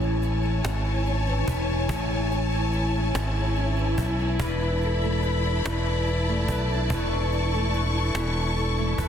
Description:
six-eight pop ballad; 48 BPM (dotted quarters); 6/8; straight; A major; A4 = 442 Hz
flamenco guitar; accompaniment; 0.0-9.1 s; A2 to B4; -29 LUFS; left 2 dB; double-tracked left and right
warm symphonic string section; sustained chords; 0.0-9.1 s; E4 to C#6; -29 LUFS; left 1 dB
fingered electric bass; bass; 0.0-9.1 s; E1 to B1; -26 LUFS; equal
cajon; drums; 0.2-9.1 s; -33 LUFS; equal
studio reverb; dense, heavily limited modern master; -23 LUFS; side -8 dB against mid
0.0-9.1 A section
0.0 Amaj7; 4.4 E7sus4
0.65 | 1.90 3.15 | 4.40 5.65 | 6.90 8.15

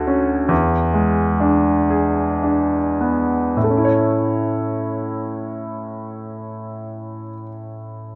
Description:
classical; 34-48 BPM (dotted quarters); 12/8; rubato; A major; A4 = 440 Hz
bright grand piano; melody; 0.0-8.2 s; D2 to C#5; -20 LUFS; equal
light reverb; close, detailed microphones; -19 LUFS; mono
0.0-3.6 A section; 3.6-8.2 B section
slowing down 0.0-3.6
0.0 Dmaj7; 0.5 E7; 3.6 A
0.50 1.91 | 3.55 5.04 6.53 8.02

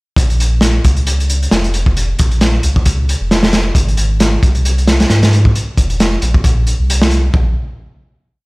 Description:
breakbeat, breaks; 134 BPM; 4/4; swing 56% on 16ths; Bb minor; A4 = 436 Hz
saturated sub bass; bass; 0.2-7.5 s; F1 to Ab2; -14 LUFS; equal; tube saturation
crunchy breakbeat drum kit; drums; 0.2-7.4 s; hi-hat, kick drum, snare drum; -13 LUFS; equal
little or no reverb; played on a big sound system in a bare room, stone room reverb; -11 LUFS; side -25 dB against mid
0.2-7.3 drop; 7.3-8.5 final note
drop 0.2-7.3
| 0.17 0.62 1.07 1.52 | 1.97 2.41 2.86 3.31 | 3.76 4.21 4.65 5.10 | 5.55 6.00 6.44 6.89 | 7.34

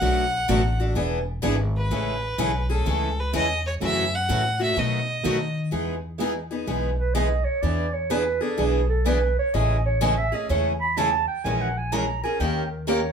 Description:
acoustic string swing (jazz manouche); 126 BPM; 4/4; swing 65% on 8ths; E major; A4 = 440 Hz
warm violin; melody; 0.0-5.6 s; A4 to F#5; -26 LUFS; equal
picked steel-string acoustic guitar; accompaniment; 0.0-13.0 s; B2 to A#4; -27 LUFS; left 2 dB
picked swing-style acoustic guitar; accompaniment; 0.0-13.0 s; B2 to B4; -31 LUFS; right 4 dB
upright bass; bass; 0.0-13.1 s; E1 to D#3; -26 LUFS; equal
breathy clarinet; second line; 7.0-13.1 s; G#4 to B5; -26 LUFS; right 5 dB
moderate studio reverb, RT60 0.6 s; band playing live in one room; -21 LUFS; side -7 dB against mid
0.0-5.7 A section; 5.7-13.1 B section
clarinet solo 5.7-13.1
0.0 Bm7; 1.0 E7; 1.9 Amaj9; 3.8 F#m7; 4.8 B7; 5.7 Emaj7; 7.6 E7; 9.5 Amaj7; 11.4 A#m7b5; 12.4 D#7
| 0.01 0.49 0.96 1.44 | 1.92 2.39 2.87 3.34 | 3.82 4.29 4.77 5.25 | 5.72 6.20 6.68 7.15 | 7.63 8.11 8.58 9.06 | 9.54 10.01 10.49 10.97 | 11.45 11.92 12.40 12.88

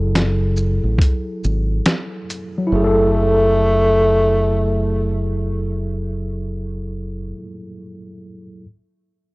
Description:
lo-fi hip hop; 70 BPM; 4/4; swing 59% on 16ths; F# minor; A4 = 439 Hz
mellow tine electric piano; accompaniment; 0.0-8.7 s; F#3 to A4; -23 LUFS; equal; medium stereo tremolo, cassette tape, low-pass filter
deep dub fingered electric bass; bass; 0.0-7.3 s; F#1 to A1; -20 LUFS; equal
dusty soul sampler-style drum kit; drums; 0.2-2.5 s; hi-hat, kick drum, shaker, snare drum; -17 LUFS; equal
breathy tenor saxophone; melody; 2.7-5.3 s; A3; -18 LUFS; equal; low-pass filter, tape echo
digital ambience; dry, gritty hardware recording, cassette tape; -16 LUFS; side -23 dB against mid
0.0-2.7 A section; 2.7-6.1 B section
0.0 F#m9
0.14 1.00 1.85 | 2.71 3.57 4.42 5.28

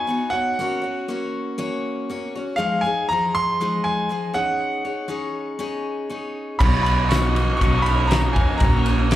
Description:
folk rock and heartland rock; 120 BPM; 4/4; straight; Db major; A4 = 440 Hz
bright concert grand piano; melody; 0.0-9.2 s; F5 to Db6; -23 LUFS; right 1 dB; slapback echo, digital delay
picked steel-string acoustic guitar; accompaniment; 0.0-9.1 s; F3 to Db5; -27 LUFS; left 2 dB; slapback echo
electric guitar through a small old amp; riff; 6.6-9.2 s; Bb3 to Db5; -27 LUFS; right 2 dB; wide subtle chorus, slapback echo
upright bass; bass; 6.6-9.2 s; Bb1 to F2; -21 LUFS; equal
loose indie drum kit; drums; 6.6-9.2 s; crash cymbal, kick drum, ride cymbal, snare drum; -20 LUFS; equal
tambourine; percussion; 7.1-9.2 s; -40 LUFS; right 1 dB
light reverb, studio ambience; live gig heard through the venue's PA, club reverb; -19 LUFS; side -13 dB against mid
0.0-9.2 A section
0.0 Cbadd9; 0.6 Gb/Bb; 2.6 Ab6; 4.3 Dbsus2; 6.6 Cbadd9; 8.6 Gb/Bb
0.08 | 0.58 1.08 1.58 2.09 | 2.59 3.09 3.59 4.09 | 4.60 5.10 5.60 6.10 | 6.61 7.11 7.61 8.11 | 8.62 9.12

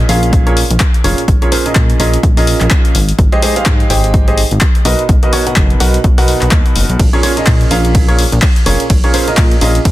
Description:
piano house; 126 BPM; 4/4; swing 58% on 16ths; A4 = 441 Hz
clear baby grand piano; riff; 0.0-9.8 s; Bb2 to G5; -15 LUFS; right 2 dB; sidechain pumping, ping-pong delay
plucky analog bass; bass; 0.0-9.9 s; F1 to Bb2; -14 LUFS; equal; sidechain pumping
punchy analog drum machine; drums; 0.1-9.9 s; handclaps, hi-hat, ride cymbal; -18 LUFS; left 2 dB; overdrive
electronic kick drum; drums; 0.3-9.9 s; -12 LUFS; equal; overdrive
digital ambience; dense, heavily limited modern master; -9 LUFS; side -16 dB against mid
0.0-9.9 A section
0.0 Bbm7; 2.9 Abmaj7; 4.9 Bmaj7; 7.0 Bbm7
0.33 0.81 | 1.28 1.76 2.23 2.71 | 3.19 3.66 4.14 4.61 | 5.09 5.57 6.04 6.52 | 7.00 7.47 7.95 8.42 | 8.90 9.38 9.85

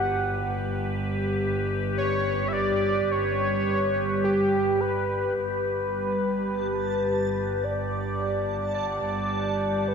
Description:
ambient; 53 BPM; 4/4; straight; G lydian; A4 = 440 Hz
warm velvety synth lead; melody; 0.0-9.9 s; G4 to F#5; -27 LUFS; left 1 dB; chorus, diffuse ambient delay
evolving wavetable pad; sustained chords; 0.0-9.9 s; G3 to F#5; -28 LUFS; right 1 dB; phaser, built-in reverb
rich chamber double bass section; bass; 0.0-9.9 s; G1; -32 LUFS; equal
backwards swelling texture; texture; 6.6-9.9 s; A5; -36 LUFS; right 7 dB; built-in reverb
wet concert hall reverb, RT60 2.3 s; -24 LUFS; side -6 dB against mid
0.0-5.4 A section; 5.4-9.9 B section
0.0 Bsus2/G; 5.4 Gmaj7
| 0.84 1.97 3.10 4.23 | 5.37 6.50 7.63 8.76 | 9.89

